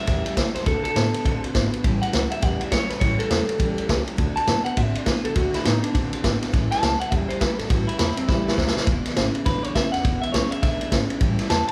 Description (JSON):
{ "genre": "rockabilly", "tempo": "205 BPM", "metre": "4/4", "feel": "swing 62% on 8ths", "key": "A mixolydian", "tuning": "A4 = 440 Hz", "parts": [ { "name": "electric guitar through a small old amp", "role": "melody", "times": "0.0-11.7 s", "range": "C4 to A5", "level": "-29 LUFS", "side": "equal", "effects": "none" }, { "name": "picked steel-string acoustic guitar", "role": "accompaniment", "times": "0.0-11.7 s", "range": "A2 to B4", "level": "-35 LUFS", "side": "equal", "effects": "none" }, { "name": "electric guitar through a small old amp", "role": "riff", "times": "0.0-11.7 s", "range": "E2 to C4", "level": "-33 LUFS", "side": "equal", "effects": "none" }, { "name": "upright bass", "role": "bass", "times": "0.1-11.7 s", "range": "E1 to D3", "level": "-31 LUFS", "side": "equal", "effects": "none" }, { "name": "vintage drum kit", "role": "drums", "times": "0.1-11.7 s", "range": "kick drum, ride cymbal, snare drum", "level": "-25 LUFS", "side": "equal", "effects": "none" } ], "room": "moderate large studio reverb, RT60 0.9 s", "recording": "band playing live in one room", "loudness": "-22 LUFS", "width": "mono", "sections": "0.0-11.7 A section", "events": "clean electric guitar solo 0.0-11.7; drum fill 8.3-8.9", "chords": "0.0 A7; 0.7 D7; 1.8 A7; 4.2 D7; 6.5 A7; 8.9 E7; 11.2 A7" }